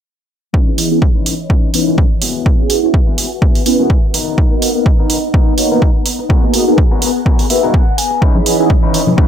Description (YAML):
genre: filtered disco house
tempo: 125 BPM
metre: 4/4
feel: swing 55% on 16ths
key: C# dorian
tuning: A4 = 440 Hz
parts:
  - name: phased string machine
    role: sustained chords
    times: 0.5-9.3 s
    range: E3 to B5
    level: -21 LUFS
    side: right 1 dB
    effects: ensemble chorus, phaser, sidechain pumping, low-pass filter
  - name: electric guitar at the edge of break-up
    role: riff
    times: 0.5-9.3 s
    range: B3 to G#5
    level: -22 LUFS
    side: left 5 dB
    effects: sidechain pumping, low-pass filter
  - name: electronic kick drum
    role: drums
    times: 0.5-9.3 s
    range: none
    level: -12 LUFS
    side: equal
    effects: none
  - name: mellow synth brass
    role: accompaniment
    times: 0.7-8.7 s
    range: A#3 to C#5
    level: -16 LUFS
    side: right 1 dB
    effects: chorus, phaser, vintage 12-bit sampler grit, sidechain pumping, low-pass filter
  - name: electronic hi-hat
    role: drums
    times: 0.8-9.0 s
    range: none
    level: -18 LUFS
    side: right 4 dB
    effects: overdrive, sidechain pumping on hats
  - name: tambourine and congas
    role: percussion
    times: 8.2-9.3 s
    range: none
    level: -18 LUFS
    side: left 2 dB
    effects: sidechain pumping on perc, low-pass filter on perc
room: digital ambience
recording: none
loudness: -11 LUFS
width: side -9 dB against mid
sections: 0.5-9.3 A section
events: filter sweep 0.5-9.3; clean electric guitar fill 7.3-8.2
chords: 0.5 C#m9; 2.2 F#9sus4; 4.1 Bmaj7; 6.3 G#m9; 8.2 C#m9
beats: | 0.54 1.02 1.50 1.98 | 2.46 2.94 3.42 3.90 | 4.38 4.86 5.34 5.82 | 6.30 6.78 7.26 7.74 | 8.22 8.70 9.18